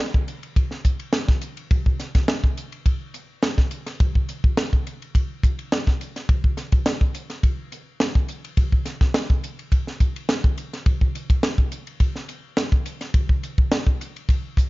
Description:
jazz; 105 BPM; 4/4; straight
crisp fusion drum kit; drums; 0.1-14.7 s; hi-hat, kick drum, ride cymbal, snare drum; -19 LUFS; equal
little or no reverb; dark, warm production, nothing above 7.5 kHz; -20 LUFS; side -21 dB against mid
0.0-14.7 A section
0.00 0.57 1.15 | 1.72 2.29 2.86 3.44 | 4.01 4.58 5.15 5.72 | 6.30 6.87 7.44 8.01 | 8.58 9.15 9.72 10.29 | 10.86 11.43 12.00 12.57 | 13.14 13.71 14.29

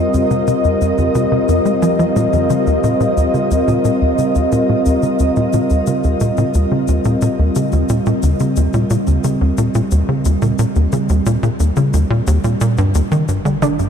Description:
ambient, sequencer-driven space music; 89 BPM; 4/4; straight; A4 = 440 Hz
sweeping resonant pad; sustained chords; 0.0-13.9 s; G3 to Eb5; -17 LUFS; equal; chorus, shimmer reverb
tight sequencer bass; riff; 0.0-13.9 s; Eb2 to Ab3; -15 LUFS; equal; analog chorus, analog delay
electronic toms and cabasa; percussion; 0.1-13.9 s; -29 LUFS; left 5 dB; overdrive, analog delay
warm sub bass; bass; 13.3-13.9 s; G1; -35 LUFS; equal
wide unison pluck; arpeggios; 13.5-13.8 s; G3 to D4; -18 LUFS; right 7 dB; auto-pan, analog delay
wet huge ambient reverb, RT60 7.8 s; -13 LUFS; side -7 dB against mid
0.0-13.3 A section
fade-in on drum 0.0-13.3
0.0 F7(no3); 2.5 Eb7; 13.3 G7(no3)
0.47 1.15 1.82 | 2.50 3.17 3.85 4.52 | 5.20 5.87 6.54 7.22 | 7.89 8.56 9.24 9.91 | 10.59 11.26 11.94 12.61 | 13.28

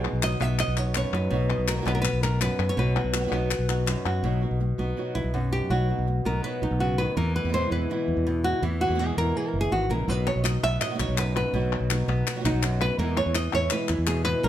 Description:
flamenco; 164 BPM; 4/4; straight; B major; A4 = 439 Hz
flamenco guitar; melody; 0.0-14.5 s; F#2 to E5; -27 LUFS; equal
flamenco guitar; stabs; 0.0-14.5 s; B2 to F#4; -34 LUFS; right 6 dB
mellow fretless electric bass; bass; 0.0-14.5 s; F#1 to F#2; -26 LUFS; equal
palmas hand claps; percussion; 0.0-4.2, 10.3-14.4 s; -31 LUFS; left 8 dB
light reverb; -23 LUFS; side -12 dB against mid
0.0-4.2 A section; 4.2-14.5 B section
nylon-string guitar solo 4.2-14.5
0.0 B; 7.2 E; 10.1 B; 13.0 E
0.22 0.59 0.95 | 1.32 1.68 2.05 2.41 | 2.78 3.14 3.51 3.87 | 4.24 4.61 4.97 5.34 | 5.70 6.07 6.44 6.80 | 7.17 7.53 7.90 8.27 | 8.63 8.99 9.36 9.72 | 10.09 10.45 10.82 11.18 | 11.54 11.91 12.27 12.63 | 12.99 13.35 13.72 14.08 | 14.44

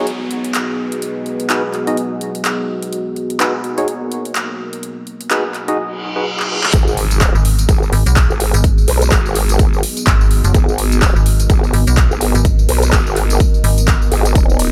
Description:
bass house; 126 BPM; 4/4; swing 58% on 16ths; G# minor; A4 = 439 Hz
deep dark ambient pad; sustained chords; 0.0-14.7 s; B3 to D#5; -26 LUFS; equal; chorus, built-in reverb, sidechain pumping
percussive organ stab; stabs; 0.0-6.3 s; D#4 to D#5; -24 LUFS; equal; chorus, sidechain pumping, analog delay
downlifter, reverse cymbal and impact; sound effects; 0.0-8.6 s; -27 LUFS; equal
big-room dance drum kit; drums; 0.1-14.7 s; handclaps, hi-hat, ride cymbal, tambourine; -24 LUFS; equal; overdrive
vowel-sweep wobble bass; bass; 6.7-14.7 s; D#1 to B1; -18 LUFS; equal; chorus, overdrive, sidechain pumping
electronic kick drum; drums; 6.7-14.5 s; -16 LUFS; equal; overdrive
metallic FM bass; bass; 7.3-14.1 s; F#1 to B1; -16 LUFS; equal; tube saturation, sidechain pumping
light reverb; -15 LUFS; mono
0.0-6.7 A section; 6.7-14.7 B section
filter sweep on synth stab 0.0-6.7; reverse cymbal 6.0-6.7; drum fill 6.4-6.7; drop 6.7-14.7; impact 6.7-8.6
0.0 G#m7
0.07 0.55 | 1.02 1.50 1.97 2.45 | 2.92 3.40 3.88 4.35 | 4.83 5.31 5.78 6.26 | 6.74 7.21 7.69 8.16 | 8.64 9.12 9.59 10.07 | 10.54 11.02 11.50 11.97 | 12.45 12.93 13.40 13.88 | 14.35

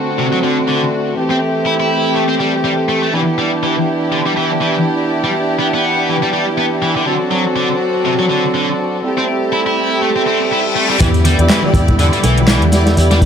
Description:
breakbeat, breaks; 122 BPM; 4/4; swing 56% on 16ths; E minor; A4 = 437 Hz
tonewheel organ; sustained chords; 0.0-13.3 s; D3 to A4; -20 LUFS; left 1 dB; overdrive, lush chorus, sidechain pumping
rich chamber string section; stabs; 0.0-13.2 s; A3 to D5; -17 LUFS; right 2 dB; low-pass filter, ping-pong delay
high-gain distorted guitar; riff; 0.2-13.2 s; C3 to E4; -17 LUFS; left 1 dB; distortion, vintage 12-bit sampler grit, low-pass filter, ping-pong delay
reverse cymbal and downlifter; sound effects; 10.2-13.3 s; -23 LUFS; left 3 dB
vintage muted fingered electric bass; bass; 11.0-13.3 s; B1 to E2; -13 LUFS; equal
crunchy breakbeat drum kit; drums; 11.0-13.3 s; hi-hat, kick drum, snare drum; -15 LUFS; equal
house drum kit; drums; 11.0-13.3 s; handclaps, hi-hat; -24 LUFS; left 1 dB; overdrive
congas and bongos; percussion; 11.2-13.3 s; -23 LUFS; right 3 dB
moderate studio reverb, RT60 0.5 s; -12 LUFS; side -7 dB against mid
0.0-11.0 A section; 11.0-13.3 B section
reverse cymbal 10.2-11.0; drop 11.0-13.3
0.0 D7; 1.2 Am7; 3.1 Em7; 7.1 D7; 9.0 Am7; 11.0 Em7
0.19 0.68 | 1.17 1.66 2.15 2.65 | 3.14 3.63 4.12 4.61 | 5.10 5.59 6.09 6.58 | 7.07 7.56 8.05 8.55 | 9.04 9.53 10.02 10.51 | 11.01 11.50 11.99 12.48 | 12.97

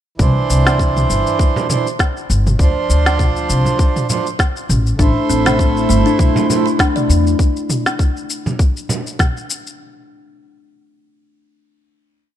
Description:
organic downtempo; 100 BPM; 4/4; swing 55% on 16ths; A4 = 442 Hz
pedal harmonium; accompaniment; 0.2-6.7 s; E3 to C5; -20 LUFS; right 4 dB; sidechain pumping, ping-pong delay
upright bass; bass; 0.2-7.3 s; G1 to E2; -16 LUFS; equal; tube saturation, sidechain pumping
electronic kick drum; drums; 0.2-9.3 s; -14 LUFS; equal; studio reverb
organic electronic drum kit; drums; 0.2-9.8 s; shaker, snare drum, toms; -20 LUFS; equal; studio reverb
frame drum; percussion; 1.6-9.0 s; -24 LUFS; right 3 dB
warbly tape-like pad; sustained chords; 5.3-7.4 s; A3 to B5; -22 LUFS; equal; chorus, built-in reverb, phaser, sidechain pumping
kalimba; arpeggios; 5.0-7.1 s; A3 to D5; -20 LUFS; left 3 dB; ping-pong delay
light reverb; dark, warm production; -13 LUFS; side -11 dB against mid
0.2-9.8 groove
0.2 Cadd9; 2.6 Dm7; 5.0 Am; 7.4 N.C.
| 0.20 0.80 1.40 2.00 | 2.60 3.19 3.79 4.39 | 5.00 5.59 6.20 6.79 | 7.39 8.00 8.60 9.20

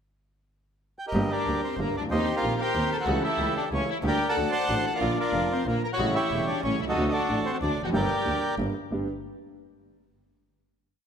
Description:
tango; 185 BPM; 3/4; rubato; G minor; A4 = 440 Hz
bandoneon; melody; 1.0-8.6 s; F4 to C6; -28 LUFS; right 1 dB
warm grand piano; accompaniment; 1.1-9.1 s; E1 to G4; -29 LUFS; right 1 dB
clear double bass; bass; 1.1-9.0 s; E1 to Eb2; -33 LUFS; right 1 dB
warm symphonic violin section; second line; 1.3-8.5 s; Bb3 to C5; -31 LUFS; left 5 dB
moderate concert hall reverb, RT60 1.9 s; faint mains hum; -24 LUFS; side -7 dB against mid
0.2-1.1 pickup bar; 1.1-8.9 A section; 8.9-9.9 final chord
0.2 N.C.; 1.1 Gm; 2.1 Eb6; 3.1 A7/C#; 4.0 Gm/D; 4.4 D; 5.0 Bb; 6.0 A7; 7.0 D; 7.9 Gm; 8.9 G
| 0.17 0.49 0.81 | 1.14 1.46 1.79 | 2.11 2.43 2.75 | 3.08 3.40 3.72 | 4.04 4.37 4.69 | 5.02 5.34 5.67 | 5.99 6.32 6.64 | 6.96 7.29 7.61 | 7.93 8.26 8.58 | 8.91

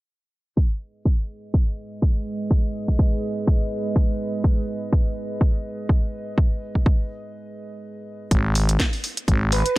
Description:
bass house; 124 BPM; 4/4; swing 56% on 16ths; G# minor; A4 = 444 Hz
dark analog pad; sustained chords; 1.8-8.3 s; G#3 to D#5; -30 LUFS; right 2 dB; chorus, sidechain pumping
electronic kick drum; drums; 0.6-9.4 s; -19 LUFS; equal
growling FM bass; bass; 8.3-9.6 s; G#1; -20 LUFS; equal; tube saturation, sidechain pumping
garage drum kit; drums; 8.3-9.7 s; hi-hat, snare drum; -25 LUFS; equal
airy dreamy lead; melody; 9.5-9.7 s; B4; -22 LUFS; right 2 dB; chorus
digital ambience; low-pass filter; -20 LUFS; side -19 dB against mid
0.6-8.3 A section; 8.3-9.8 B section
filter sweep on analog synth pad 0.6-8.3; filter sweep 0.6-8.3; break 7.3-8.3
0.6 G#m
| 0.57 1.05 1.54 2.02 | 2.51 2.99 3.47 3.96 | 4.44 4.92 5.41 5.89 | 6.38 6.86 7.34 7.83 | 8.31 8.80 9.28

